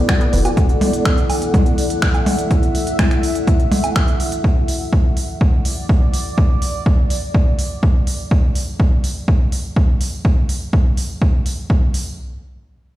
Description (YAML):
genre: melodic techno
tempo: 124 BPM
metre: 4/4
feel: straight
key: unclear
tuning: A4 = 440 Hz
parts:
  - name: dark analog pad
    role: sustained chords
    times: 0.0-4.4 s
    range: B3 to D5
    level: -26 LUFS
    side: right 1 dB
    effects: chorus, sidechain pumping
  - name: analog pluck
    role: arpeggios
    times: 0.0-0.5 s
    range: B3 to F#4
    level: -26 LUFS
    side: equal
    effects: chorus, sidechain pumping, digital delay
  - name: tight sequencer bass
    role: bass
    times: 0.0-0.5 s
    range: F#1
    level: -16 LUFS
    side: equal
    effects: sidechain pumping
  - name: deep dark ambient pad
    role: texture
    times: 0.0-8.3 s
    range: E4 to F#5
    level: -24 LUFS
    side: left 1 dB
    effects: chorus, built-in reverb, sidechain pumping
  - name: electronic kick drum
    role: drums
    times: 0.1-11.8 s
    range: none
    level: -15 LUFS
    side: equal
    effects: overdrive
  - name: techno drum kit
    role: drums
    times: 0.1-12.0 s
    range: finger snaps, hi-hat, percussion blips, woodblock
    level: -23 LUFS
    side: equal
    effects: sidechain pumping on hats, sidechain pumping on cymbals, sidechain pumping on perc
room: light reverb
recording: played on a big sound system in a bare room, large studio reverb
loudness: -14 LUFS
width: side -15 dB against mid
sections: 0.0-12.2 A section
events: none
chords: 0.0 Bm; 4.4 D; 8.3 N.C.